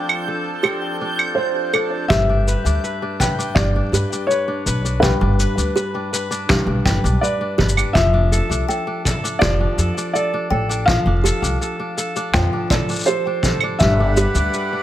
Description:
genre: folktronica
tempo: 82 BPM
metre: 4/4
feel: straight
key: unclear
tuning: A4 = 440 Hz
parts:
  - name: felt-muted upright piano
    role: melody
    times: 0.0-14.8 s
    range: A4 to F5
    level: -23 LUFS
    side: left 1 dB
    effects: vintage 12-bit sampler grit, ping-pong delay
  - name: kalimba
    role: second line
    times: 0.0-14.4 s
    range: G4 to G5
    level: -27 LUFS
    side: right 1 dB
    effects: ping-pong delay
  - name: hand-pumped harmonium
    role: sustained chords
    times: 0.0-2.1, 13.8-14.8 s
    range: F3 to F#5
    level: -26 LUFS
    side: right 2 dB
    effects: none
  - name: kora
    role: arpeggios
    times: 0.0-14.8 s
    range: G2 to B4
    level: -24 LUFS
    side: equal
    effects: ping-pong delay
  - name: backwards swelling texture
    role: texture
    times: 0.0-2.1, 14.1-14.8 s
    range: G6 to D7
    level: -30 LUFS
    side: right 1 dB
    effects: built-in reverb
  - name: electronic claves, cabasa and finger snaps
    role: drums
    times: 0.1-14.7 s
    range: none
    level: -24 LUFS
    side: right 1 dB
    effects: studio reverb
  - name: upright bass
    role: bass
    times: 2.1-14.5 s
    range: F1 to G2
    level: -19 LUFS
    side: equal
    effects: none
  - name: kick drum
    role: drums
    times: 2.1-14.0 s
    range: none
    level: -20 LUFS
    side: equal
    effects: studio reverb
room: light reverb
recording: none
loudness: -16 LUFS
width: side -12 dB against mid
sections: 0.0-2.1 A section; 2.1-14.8 B section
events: none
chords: 0.0 F6; 2.1 G; 8.0 F6; 13.8 Gmaj7

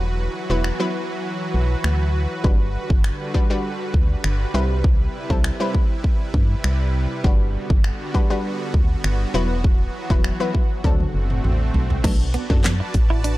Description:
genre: dance-pop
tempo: 100 BPM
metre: 4/4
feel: straight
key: G major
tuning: A4 = 440 Hz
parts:
  - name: analog pluck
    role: accompaniment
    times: 0.0-13.3 s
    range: F#3 to B4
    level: -27 LUFS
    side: left 2 dB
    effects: chorus
  - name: supersaw pad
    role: sustained chords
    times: 0.0-13.4 s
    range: C3 to A5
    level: -29 LUFS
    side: right 1 dB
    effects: sidechain pumping
  - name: organ-like FM bass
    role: bass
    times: 0.0-13.4 s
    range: E1 to G2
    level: -21 LUFS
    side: equal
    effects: sidechain pumping
  - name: pop drum kit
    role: drums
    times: 0.6-13.4 s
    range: crash cymbal, finger snaps, handclaps, hi-hat, kick drum, snare drum, toms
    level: -20 LUFS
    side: equal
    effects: none
  - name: direct-recorded clean electric guitar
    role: riff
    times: 12.0-13.3 s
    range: A3 to E4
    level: -28 LUFS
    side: right 5 dB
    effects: wide subtle chorus
room: little or no reverb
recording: dark, warm production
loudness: -18 LUFS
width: side -18 dB against mid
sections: 0.0-12.0 A section; 12.0-13.4 B section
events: drum fill 10.8-12.0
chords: 0.0 Esus2; 2.4 Gmaj7; 4.5 Cmaj7; 7.2 Gmaj7; 9.3 Esus2; 10.8 D7; 12.0 Bm7

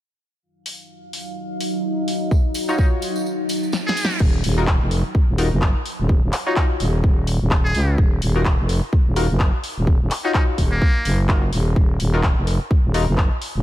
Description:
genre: bass house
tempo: 127 BPM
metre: 4/4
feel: swing 58% on 16ths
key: Eb minor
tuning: A4 = 444 Hz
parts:
  - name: deep dark ambient pad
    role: sustained chords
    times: 1.1-4.2 s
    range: Gb3 to F5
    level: -26 LUFS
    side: equal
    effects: chorus, built-in reverb, sidechain pumping
  - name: house drum kit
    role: drums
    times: 0.7-13.5 s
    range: crash cymbal, handclaps, hi-hat, snare drum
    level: -27 LUFS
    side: left 1 dB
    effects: studio reverb
  - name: electronic kick drum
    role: drums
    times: 2.3-13.3 s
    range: none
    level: -17 LUFS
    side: equal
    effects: studio reverb
  - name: tambourine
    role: percussion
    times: 2.3-4.2 s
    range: none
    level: -36 LUFS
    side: right 2 dB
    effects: none
  - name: trumpet with metal mute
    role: melody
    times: 2.7-11.2 s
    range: Bb3 to Ab4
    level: -28 LUFS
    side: equal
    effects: tape echo
  - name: band-passed chord stab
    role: stabs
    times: 2.7-13.0 s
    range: Eb4 to Db5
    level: -27 LUFS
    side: left 3 dB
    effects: chorus, sidechain pumping, tape echo
  - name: reverse cymbal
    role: sound effects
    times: 3.5-4.2 s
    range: none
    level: -34 LUFS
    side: right 5 dB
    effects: none
  - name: growling FM bass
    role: bass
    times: 4.2-13.6 s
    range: Eb1 to Db2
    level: -19 LUFS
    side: equal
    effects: sidechain pumping
room: digital ambience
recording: none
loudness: -17 LUFS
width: side -14 dB against mid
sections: 0.4-4.2 A section; 4.2-13.6 B section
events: break 3.3-4.2; reverse cymbal 3.5-4.2; drum fill 3.7-4.2; filter sweep on FM bass 4.2-13.6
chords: 0.4 Ebmadd9

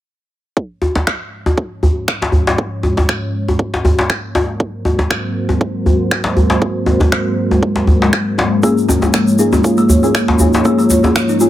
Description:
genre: afro house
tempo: 119 BPM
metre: 4/4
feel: swing 55% on 16ths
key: Bb minor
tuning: A4 = 436 Hz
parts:
  - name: dark analog pad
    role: sustained chords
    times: 0.6-11.5 s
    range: Ab3 to Db5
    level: -17 LUFS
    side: equal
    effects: chorus, sidechain pumping
  - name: electronic kick drum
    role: drums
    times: 0.6-11.3 s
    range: none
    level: -20 LUFS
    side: right 1 dB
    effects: high-pass filter on kick
  - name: djembe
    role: percussion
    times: 0.8-11.1 s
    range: none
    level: -14 LUFS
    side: equal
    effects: none
  - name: electronic finger snaps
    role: drums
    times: 1.1-11.3 s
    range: none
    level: -19 LUFS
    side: right 1 dB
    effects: none
  - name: kalimba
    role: arpeggios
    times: 8.6-11.5 s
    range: Bb3 to F4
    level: -15 LUFS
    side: equal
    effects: sidechain pumping, tape echo
  - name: deep mellow chord stab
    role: stabs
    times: 8.6-11.5 s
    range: Bb3 to Ab4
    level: -18 LUFS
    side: left 2 dB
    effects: chorus, sidechain pumping, tape echo
  - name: egg shaker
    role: percussion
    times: 8.6-11.5 s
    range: none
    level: -25 LUFS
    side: equal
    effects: none
room: light reverb, small room ambience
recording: none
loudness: -12 LUFS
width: side -13 dB against mid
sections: 0.6-11.5 A section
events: none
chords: 0.6 Bbm7; 4.6 Ab9; 8.6 Bbm7

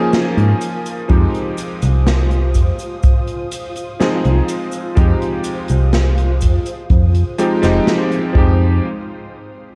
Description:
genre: vaporwave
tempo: 62 BPM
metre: 4/4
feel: straight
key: F minor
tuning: A4 = 440 Hz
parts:
  - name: clear electric grand piano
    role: accompaniment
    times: 0.0-8.9 s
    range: F3 to Ab4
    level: -22 LUFS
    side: equal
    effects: lush chorus, tape echo
  - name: soft string machine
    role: sustained chords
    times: 0.0-8.8 s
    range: Ab3 to Eb6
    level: -30 LUFS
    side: equal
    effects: ensemble chorus
  - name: swinging big-band drum kit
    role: drums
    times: 0.1-8.3 s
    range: cabasa, hi-hat, snare drum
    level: -26 LUFS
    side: equal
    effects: small room ambience, gated reverb
  - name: slap-like FM bass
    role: bass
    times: 0.4-8.8 s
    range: F1 to Ab2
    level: -16 LUFS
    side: equal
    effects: none
  - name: kick drum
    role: drums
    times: 1.1-8.6 s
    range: none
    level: -17 LUFS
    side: equal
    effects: small room ambience
room: small room reverb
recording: cassette tape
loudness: -16 LUFS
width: mono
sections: 0.0-8.8 A section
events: filter sweep on FM bass 0.0-8.8; filter sweep on string machine 0.0-8.8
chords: 0.0 Db6; 1.1 Fm7; 8.8 N.C.

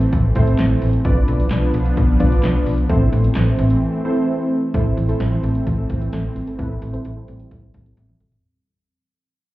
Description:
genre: synth-pop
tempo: 130 BPM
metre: 4/4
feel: straight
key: A minor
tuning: A4 = 440 Hz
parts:
  - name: lush unison pad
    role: sustained chords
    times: 0.0-8.4 s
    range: E3 to D4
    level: -23 LUFS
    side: equal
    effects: chorus, low-pass filter
  - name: slap-like FM bass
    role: bass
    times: 0.0-8.4 s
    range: G1 to B1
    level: -19 LUFS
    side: equal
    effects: none
  - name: punchy analog drum machine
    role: drums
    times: 0.0-8.4 s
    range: handclaps, hi-hat, kick drum, snare drum, toms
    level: -20 LUFS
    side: equal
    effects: none
  - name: warm analog keys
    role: accompaniment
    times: 0.4-8.4 s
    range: C4 to A5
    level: -25 LUFS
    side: equal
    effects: chorus, low-pass filter
  - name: soft round pluck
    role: arpeggios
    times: 4.7-8.4 s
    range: E3 to A4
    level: -29 LUFS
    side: right 1 dB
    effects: chorus, low-pass filter
room: light reverb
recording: heard muffled through a wall, club reverb, EQ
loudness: -16 LUFS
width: side -17 dB against mid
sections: 0.0-4.7 A section; 4.7-8.4 B section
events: break 3.8-4.7; fade-out 4.7-8.4; filter sweep 4.7-8.4; synth keys fill 7.5-8.4; drum fill 8.0-8.4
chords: 0.0 Am; 1.0 Bdim; 2.9 Am

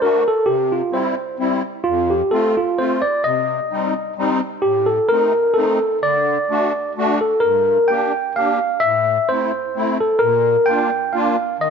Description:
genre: alpine folk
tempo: 130 BPM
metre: 3/4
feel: swing 55% on 8ths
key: unclear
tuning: A4 = 440 Hz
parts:
  - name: tine electric piano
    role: melody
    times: 0.0-11.7 s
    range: F4 to G5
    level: -17 LUFS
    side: equal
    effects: ping-pong delay
  - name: musette accordion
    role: accompaniment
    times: 0.0-11.7 s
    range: F2 to G4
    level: -22 LUFS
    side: left 2 dB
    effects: none
room: wet echo chamber reverb, RT60 1.7 s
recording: nothing above 7.7 kHz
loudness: -16 LUFS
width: side -6 dB against mid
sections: 0.0-11.7 A section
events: none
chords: 0.5 C; 1.9 F; 3.2 Cm; 4.6 Adim; 6.0 D; 7.4 Gm; 8.8 Am; 10.2 Bb

